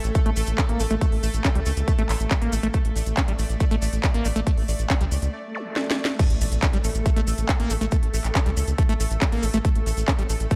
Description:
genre	psychedelic trance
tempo	139 BPM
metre	4/4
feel	straight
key	A major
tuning	A4 = 440 Hz
part	pulsing gated texture	sustained chords	0.0-10.6 s	A3 to D5	-35 LUFS	equal	chorus, built-in reverb, vintage 12-bit sampler grit, sidechain pumping
part	round analog bass	bass	0.0-10.5 s	A1 to C#2	-27 LUFS	equal	none
part	techno drum kit	drums	0.0-10.6 s	crash cymbal, handclaps, hi-hat, snare drum	-32 LUFS	equal	none
part	maracas	percussion	0.0-10.6 s	none	-39 LUFS	equal	none
part	liquid acid bass	riff	0.2-10.6 s	G3 to C#4	-31 LUFS	equal	chorus, sidechain pumping, tape echo
part	electronic kick drum	drums	0.2-10.6 s	none	-24 LUFS	equal	none
part	swell, zap and impact	sound effects	5.5-7.9 s	none	-37 LUFS	equal	none
room	little or no reverb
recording	dark, warm production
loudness	-23 LUFS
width	mono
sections	0.0-6.2 A section; 6.2-10.6 B section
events	filter sweep on acid bass 0.0-6.2; break 5.3-6.2; swell 5.5-6.2; drum fill 5.8-6.2; drop 6.2-10.6; impact 6.2-7.9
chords	0.0 Gsus2 (rootless); 6.2 A5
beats	0.15 0.58 | 1.01 1.45 1.88 2.31 | 2.74 3.17 3.60 4.04 | 4.47 4.90 5.33 5.76 | 6.19 6.62 7.06 7.49 | 7.92 8.35 8.78 9.21 | 9.65 10.08 10.51

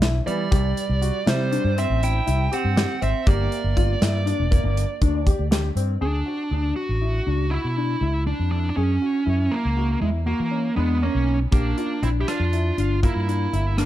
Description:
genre	progressive instrumental, band music in an uneven meter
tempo	240 BPM (eighths)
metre	11/8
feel	straight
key	unclear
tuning	A4 = 440 Hz
part	warm baby grand piano	arpeggios	0.0-13.9 s	Bb3 to G#4	-29 LUFS	left 7 dB	digital delay
part	fretless electric bass	bass	0.0-13.8 s	E1 to E3	-23 LUFS	equal	analog chorus
part	modern studio drum kit	drums	0.0-5.9, 11.5-13.9 s	hi-hat, kick drum, rim click, snare drum	-22 LUFS	equal	none
part	dark smooth lead guitar	melody	0.3-13.9 s	G#3 to G5	-26 LUFS	right 2 dB	overdrive, digital delay
part	clean electric guitar	second line	0.3-5.5, 10.8-13.9 s	G3 to E4	-30 LUFS	right 6 dB	none
room	light reverb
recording	dark, warm production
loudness	-20 LUFS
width	side -13 dB against mid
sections	0.0-6.0 A section; 6.0-13.9 B section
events	none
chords	0.0 E5; 0.5 C; 3.3 Gm; 6.0 D; 8.8 F#; 11.5 Bb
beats	0.02 0.27 | 0.52 0.77 1.02 1.27 1.52 1.77 2.02 2.27 2.52 2.77 3.02 | 3.27 3.52 3.77 4.01 4.26 4.51 4.76 5.01 5.26 5.51 5.76 | 6.01 6.26 6.51 6.76 7.01 7.26 7.51 7.77 8.02 8.27 8.52 | 8.77 9.02 9.27 9.52 9.77 10.02 10.27 10.52 10.77 11.02 11.28 | 11.53 11.78 12.03 12.28 12.53 12.78 13.03 13.28 13.53 13.78

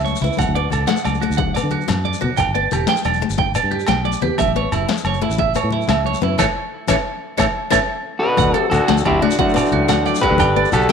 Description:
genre	highlife guitar band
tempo	120 BPM (dotted quarters)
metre	12/8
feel	straight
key	D major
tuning	A4 = 441 Hz
part	picked steel-string acoustic guitar	accompaniment	0.0-10.9 s	E3 to C#4	-24 LUFS	left 11 dB	none
part	clean electric guitar	arpeggios	0.0-10.9 s	E4 to G5	-21 LUFS	right 9 dB	tape echo
part	fingered electric bass	bass	0.0-10.9 s	E1 to D3	-22 LUFS	equal	none
part	congas	percussion	0.0-10.9 s	none	-27 LUFS	left 10 dB	none
part	punchy analog drum machine	drums	0.1-10.9 s	hi-hat, kick drum, snare drum	-25 LUFS	left 4 dB	none
part	shekere	percussion	0.1-10.9 s	none	-30 LUFS	left 7 dB	none
part	agogo bells	percussion	0.4-10.9 s	none	-27 LUFS	right 3 dB	none
part	electric guitar at the edge of break-up	melody	8.2-10.9 s	D4 to B4	-17 LUFS	right 1 dB	vibrato effect
part	warm tenor saxophone	second line	8.2-10.9 s	A2 to D3	-23 LUFS	left 8 dB	tape echo
room	moderate echo chamber reverb, RT60 1.4 s, small room ambience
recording	1960s-style stereo with parts hard left and right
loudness	-15 LUFS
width	side -6 dB against mid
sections	0.0-8.4 A section; 8.4-10.9 B section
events	band accent 6.4-8.4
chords	0.4 D; 2.4 G; 4.4 A; 8.4 D; 10.4 G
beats	| 0.39 0.89 1.39 1.89 | 2.39 2.89 3.39 3.89 | 4.39 4.89 5.39 5.89 | 6.39 6.89 7.39 7.89 | 8.39 8.89 9.39 9.89 | 10.39 10.89

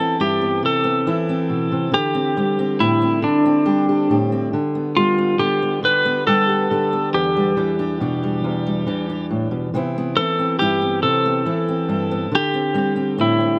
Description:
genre	acoustic folk-pop ballad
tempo	46 BPM (dotted quarters)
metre	6/8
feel	straight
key	C major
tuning	A4 = 445 Hz
part	pedal steel guitar	melody	0.0-13.6 s	D4 to B4	-22 LUFS	equal	tape echo
part	fingerpicked steel-string acoustic guitar	accompaniment	0.0-13.6 s	E2 to G4	-23 LUFS	equal	none
room	light reverb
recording	none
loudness	-19 LUFS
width	mono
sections	0.0-13.6 A section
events	none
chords	0.0 Cmaj7; 1.9 D7sus4; 4.5 G/D; 7.1 Em7; 9.7 Cmaj7; 12.3 D7sus4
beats	0.63 | 1.93 3.23 | 4.53 5.82 | 7.12 8.42 | 9.72 11.02 | 12.31

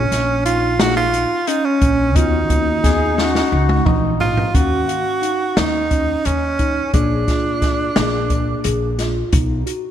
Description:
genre	progressive instrumental, band music in an uneven meter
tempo	176 BPM (eighths)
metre	7/8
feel	straight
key	Eb minor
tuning	A4 = 441 Hz
part	warm tenor saxophone	melody	0.0-8.9 s	Db4 to Gb4	-20 LUFS	right 3 dB	slapback echo, analog delay
part	mellow tine electric piano	arpeggios	0.0-9.9 s	Bb3 to F5	-24 LUFS	left 1 dB	medium stereo tremolo, slapback echo, analog delay
part	upright bass	bass	0.0-9.6 s	Bb1 to Eb2	-21 LUFS	equal	none
part	open jazz drum kit	drums	0.1-9.8 s	hi-hat, kick drum, snare drum, toms	-20 LUFS	equal	none
part	tine electric piano	accompaniment	0.8-8.9 s	Bb2 to Ab4	-26 LUFS	left 3 dB	wide subtle chorus, slapback echo
part	warm flugelhorn	second line	2.8-4.5 s	Eb4 to Ab4	-23 LUFS	left 4 dB	slapback echo
room	moderate lush hall reverb, RT60 2.3 s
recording	big arena sound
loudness	-15 LUFS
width	side -10 dB against mid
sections	0.0-4.5 A section; 4.5-9.9 B section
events	drum fill 3.2-4.5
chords	0.0 Bbmadd11; 2.2 Ebm9; 4.5 Ebm7; 6.9 Bb7; 9.3 Abm7/Cb (rootless)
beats	0.11 0.45 0.79 1.14 1.48 1.82 | 2.16 2.50 2.84 3.18 3.52 3.86 4.21 | 4.55 4.89 5.23 5.57 5.91 6.25 6.60 | 6.94 7.28 7.62 7.96 8.31 8.65 8.99 | 9.33 9.67

